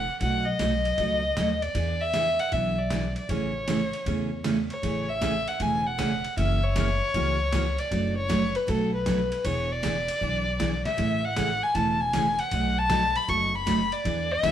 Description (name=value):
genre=country, western swing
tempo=156 BPM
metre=4/4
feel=swing 66% on 8ths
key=A major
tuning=A4 = 440 Hz
part: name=dark fiddle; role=melody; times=0.0-14.5 s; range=A4 to C#6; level=-27 LUFS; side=left 1 dB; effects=none
part: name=upright bass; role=bass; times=0.0-14.5 s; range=E1 to E2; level=-31 LUFS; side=equal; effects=none
part: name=picked steel-string acoustic guitar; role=accompaniment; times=0.2-14.5 s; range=B2 to G#4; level=-29 LUFS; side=right 2 dB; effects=none
part: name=trip hop sampler-style drum kit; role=drums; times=0.2-14.5 s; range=hi-hat, kick drum, ride cymbal, snare drum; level=-34 LUFS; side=equal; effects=none
room=wet studio reverb, RT60 0.9 s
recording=band playing live in one room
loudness=-23 LUFS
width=side -10 dB against mid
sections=0.0-4.8 A section; 4.8-14.5 A section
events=none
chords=0.2 B7; 1.8 E7; 3.3 Amaj7; 6.4 F#7; 7.9 Bm7/F#; 9.5 E7; 11.0 Amaj7; 12.5 B7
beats=| 0.21 0.60 0.98 1.37 | 1.75 2.14 2.52 2.91 | 3.29 3.68 4.07 4.45 | 4.83 5.22 5.61 5.99 | 6.38 6.76 7.14 7.53 | 7.91 8.30 8.68 9.07 | 9.45 9.84 10.22 10.60 | 10.99 11.37 11.75 12.14 | 12.52 12.90 13.29 13.67 | 14.05 14.44